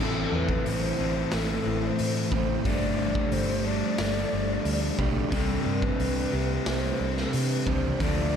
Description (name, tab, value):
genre	rock, shoegaze and dream pop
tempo	90 BPM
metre	4/4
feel	straight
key	A minor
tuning	A4 = 441 Hz
part	bright long shakuhachi	melody	0.0-8.4 s	A4 to D5	-32 LUFS	left 1 dB	diffuse ambient delay
part	clean electric guitar	arpeggios	0.0-8.4 s	E3 to C4	-38 LUFS	left 8 dB	none
part	crunchy overdriven guitar	riff	0.0-8.4 s	A2 to A4	-31 LUFS	left 8 dB	wide subtle chorus
part	crunchy overdriven guitar	riff	0.0-8.4 s	A2 to G4	-30 LUFS	right 6 dB	reverse reverb
part	vintage muted fingered electric bass	bass	0.0-8.4 s	G1 to C3	-31 LUFS	equal	none
part	raw garage drum kit	drums	0.5-8.2 s	hi-hat, kick drum, snare drum	-31 LUFS	equal	none
room	wet huge ambient reverb, RT60 8.2 s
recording	dreamy mix soaked in reverb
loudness	-24 LUFS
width	side -8 dB against mid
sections	0.0-8.4 A section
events	none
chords	0.0 Am; 2.7 Gsus2; 5.3 Csus2